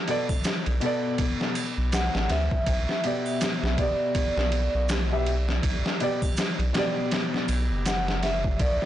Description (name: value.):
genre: trip hop.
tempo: 81 BPM.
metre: 4/4.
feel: swing 59% on 16ths.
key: unclear.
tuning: A4 = 440 Hz.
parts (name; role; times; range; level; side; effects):
felt-muted upright piano; accompaniment; 0.1-8.6 s; B2 to E5; -30 LUFS; left 1 dB; tremolo, tape echo.
trip hop sampler-style drum kit; drums; 0.1-8.9 s; kick drum, ride cymbal, snare drum; -27 LUFS; equal; overdrive.
triangle and tube shaker; percussion; 0.3-8.0 s; none; -41 LUFS; right 5 dB; none.
round analog bass; bass; 0.7-8.8 s; F#1 to D2; -26 LUFS; equal; tube saturation.
vibraphone with medium mallets; melody; 1.9-8.9 s; D5 to F#5; -31 LUFS; right 1 dB; tape echo.
room: light reverb.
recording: blown-out, overdriven recording, overdrive, nothing above 10.6 kHz.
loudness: -23 LUFS.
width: side -12 dB against mid.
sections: 0.0-8.9 A section.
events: none.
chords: 0.0 Bm7; 2.7 G/B.